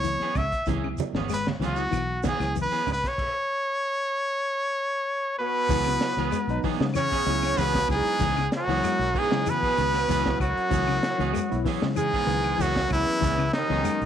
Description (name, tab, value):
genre	afrobeat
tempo	96 BPM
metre	4/4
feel	straight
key	C# minor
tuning	A4 = 437 Hz
part	brilliant trumpet	melody	0.0-14.1 s	D#4 to E5	-26 LUFS	equal	none
part	tine electric piano	accompaniment	0.0-14.0 s	E3 to E4	-34 LUFS	left 1 dB	overdrive, fast stereo tremolo
part	semi-hollow electric guitar	arpeggios	0.0-14.1 s	C#3 to G#3	-32 LUFS	left 11 dB	none
part	fingered electric bass	bass	0.0-14.1 s	G#1 to C#3	-30 LUFS	equal	transformer saturation
part	crunchy breakbeat drum kit	drums	0.0-14.1 s	crash cymbal, hi-hat, kick drum, snare drum	-31 LUFS	equal	none
part	shekere	percussion	0.0-14.0 s	none	-37 LUFS	right 3 dB	none
part	electric guitar at the edge of break-up	stabs	0.2-13.9 s	E3 to G#4	-35 LUFS	right 11 dB	vibrato effect
part	claves	percussion	0.4-14.0 s	none	-45 LUFS	left 13 dB	none
part	congas	percussion	0.4-3.0 s	none	-32 LUFS	right 9 dB	none
part	breathy tenor saxophone	second line	5.4-14.1 s	D#3 to C#4	-32 LUFS	right 11 dB	none
part	raspy baritone saxophone	second line	5.4-14.1 s	D#2 to C#3	-34 LUFS	left 10 dB	none
room	light reverb, small room ambience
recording	1960s-style stereo with parts hard left and right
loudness	-23 LUFS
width	side -9 dB against mid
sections	0.0-5.7 A section; 5.7-14.1 B section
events	none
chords	0.0 C#m7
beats	0.04 | 0.67 1.30 1.93 2.56 | 3.18 3.81 4.44 5.07 | 5.70 6.33 6.96 7.58 | 8.21 8.84 9.46 10.09 | 10.72 11.34 11.97 12.60 | 13.22 13.85